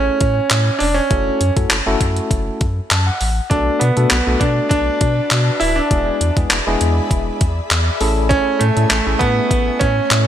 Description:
dance-pop; 100 BPM; 4/4; straight; B dorian; A4 = 440 Hz
bright concert grand piano; melody; 0.0-10.3 s; A3 to E4; -18 LUFS; right 2 dB; digital delay
tine electric piano; accompaniment; 0.0-9.8 s; G#3 to A5; -23 LUFS; left 3 dB; medium stereo tremolo, sidechain pumping
warm sub bass; bass; 0.0-10.3 s; D1 to B2; -19 LUFS; equal; sidechain pumping
crisp 8-bit digital drum machine; drums; 0.2-10.3 s; handclaps, hi-hat, kick drum; -18 LUFS; equal; overdrive, gated reverb
ethereal airy pad; sustained chords; 4.0-10.3 s; A3 to C#6; -26 LUFS; left 1 dB; ensemble chorus, built-in reverb, tremolo, sidechain pumping
light reverb, digital ambience; bright 1980s-style digital production; -14 LUFS; side -10 dB against mid
0.0-10.3 A section
tine electric piano fill 2.6-3.5
0.0 Amaj7; 1.1 F#m7; 3.5 Bm7; 5.9 E7; 8.0 Amaj7
0.51 | 1.11 1.71 2.31 2.91 | 3.51 4.11 4.71 5.31 | 5.91 6.51 7.11 7.71 | 8.31 8.91 9.51 10.11

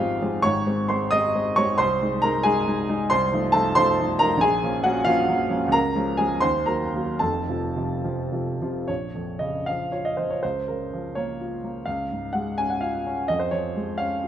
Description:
classical, romantic character piece for solo piano; 67-94 BPM (dotted quarters); 6/8; rubato; Bb minor from 3.1 s; A4 = 439 Hz
warm grand piano; solo; 0.0-14.3 s; F1 to Eb6; -21 LUFS; equal
light reverb; close, detailed microphones; -21 LUFS; side -10 dB against mid
0.0-8.9 A section; 8.9-14.3 B section
0.4 Ab; 1.8 Ab/C; 3.1 F7/C; 4.4 Bbm; 5.7 Db; 6.4 Ebm; 7.2 F; 8.9 Bbm; 10.4 Bbm/Db; 11.9 Db; 13.3 Db/F
| 0.43 1.13 | 1.79 2.45 | 3.10 3.76 | 4.40 5.06 | 5.73 6.42 | 7.20 8.02 | 8.88 9.67 | 10.43 11.15 | 11.86 12.58 | 13.29 13.98

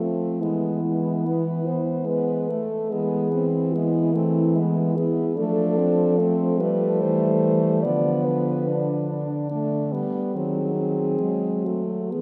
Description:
classical, lyrical piece for horn quartet; 72 BPM; 3/4; rubato; A4 = 440 Hz
dark French horn; melody; 0.0-12.2 s; E4 to D5; -29 LUFS; equal
warm French horn; second line; 0.0-12.2 s; G#3 to E4; -30 LUFS; equal
mellow French horn; accompaniment; 0.0-12.2 s; F3 to C4; -30 LUFS; equal
dark French horn; bass; 0.0-12.2 s; D3 to F#3; -28 LUFS; equal
wet church reverb, RT60 3.6 s; -23 LUFS; mono
0.0-12.2 A section
0.4 E; 5.4 Fmaj7; 7.8 Bdim/D; 10.3 D#dim7
| 0.42 1.25 2.07 | 2.91 3.74 4.55 | 5.37 6.19 7.01 | 7.83 8.67 9.51 | 10.34 11.21 12.14

